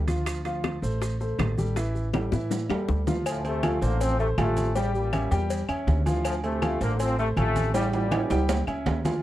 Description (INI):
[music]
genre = latin, salsa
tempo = 161 BPM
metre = 4/4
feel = straight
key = D minor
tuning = A4 = 441 Hz
[part]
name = upright bass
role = bass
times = 0.0-9.2 s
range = A1 to A2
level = -27 LUFS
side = equal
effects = none
[part]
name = warm upright piano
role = accompaniment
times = 0.1-9.2 s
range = E3 to G5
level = -30 LUFS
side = equal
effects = none
[part]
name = bongos and cowbell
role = percussion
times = 0.1-9.0 s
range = none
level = -34 LUFS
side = left 7 dB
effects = none
[part]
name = congas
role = percussion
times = 0.1-9.2 s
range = none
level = -32 LUFS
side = left 1 dB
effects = none
[part]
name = maracas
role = percussion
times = 0.1-9.2 s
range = none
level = -45 LUFS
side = right 4 dB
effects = none
[part]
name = timbales and agogo bells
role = percussion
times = 0.1-9.2 s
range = none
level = -33 LUFS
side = right 5 dB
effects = none
[part]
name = claves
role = percussion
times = 0.3-8.9 s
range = none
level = -38 LUFS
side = left 8 dB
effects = none
[part]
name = mellow trombone section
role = melody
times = 3.1-9.1 s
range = G2 to C4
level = -29 LUFS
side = left 1 dB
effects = none
[sound]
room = little or no reverb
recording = dry, close 1970s-style studio recording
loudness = -23 LUFS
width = side -14 dB against mid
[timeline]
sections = 0.0-3.3 A section; 3.3-9.2 B section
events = drum fill 2.1-3.3, 7.7-9.2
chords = 0.3 Dm7; 1.8 A5; 3.3 Dm7; 4.8 A7; 6.2 Dm7; 7.7 A7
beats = | 0.27 0.64 1.01 1.39 | 1.76 2.14 2.51 2.89 | 3.26 3.64 4.01 4.38 | 4.76 5.13 5.50 5.88 | 6.25 6.62 7.00 7.37 | 7.74 8.12 8.49 8.86